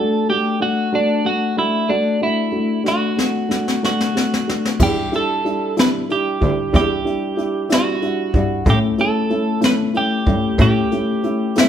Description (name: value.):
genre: six-eight pop ballad.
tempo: 62 BPM (dotted quarters).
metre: 6/8.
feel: straight.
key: E dorian.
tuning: A4 = 440 Hz.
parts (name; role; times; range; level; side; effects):
twelve-string electric guitar; melody; 0.0-11.7 s; D4 to B4; -21 LUFS; right 3 dB; none.
dark upright piano; accompaniment; 0.0-11.7 s; G3 to F#4; -20 LUFS; left 2 dB; none.
jazz brush drum kit; drums; 2.9-11.7 s; crash cymbal, hi-hat, kick drum, snare drum; -19 LUFS; left 1 dB; none.
rich cello; bass; 4.8-10.7 s; D2 to A2; -20 LUFS; equal; none.
room: wet large studio reverb, RT60 1.1 s.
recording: band playing live in one room.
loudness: -16 LUFS.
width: side -9 dB against mid.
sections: 0.0-4.8 A section; 4.8-11.7 B section.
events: drum fill 2.8-4.8.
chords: 0.0 D; 4.8 Em7; 8.7 A.